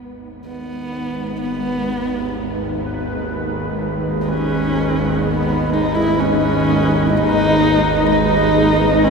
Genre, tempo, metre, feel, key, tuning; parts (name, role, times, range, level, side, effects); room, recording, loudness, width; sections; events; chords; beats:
dark ambient drone; 63 BPM; 4/4; straight; G# minor; A4 = 440 Hz
granular cloud pad; sustained chords; 0.3-9.1 s; G#3 to D#5; -21 LUFS; equal; built-in reverb, shimmer reverb
bowed-like drone; drone; 0.8-9.1 s; G#1 to D#2; -20 LUFS; right 1 dB; built-in reverb
bubbling stepped-filter texture; texture; 0.1-9.1 s; B4; -27 LUFS; right 1 dB; chorus, built-in reverb, shimmer reverb
dark horsehead fiddle; melody; 0.5-9.1 s; B3 to E4; -21 LUFS; equal; shimmer reverb, ping-pong delay
wet huge ambient reverb, RT60 8.3 s; -15 LUFS; side -4 dB against mid
0.0-9.1 A section
fade-in on synth drone 0.0-9.1; fade-in on ambient pad 0.0-9.1; fade-in on synth texture 0.0-9.1; fade-in on horsehead fiddle 0.0-9.1
0.0 G#m
0.46 1.41 2.36 | 3.31 4.27 5.22 6.17 | 7.12 8.08 9.03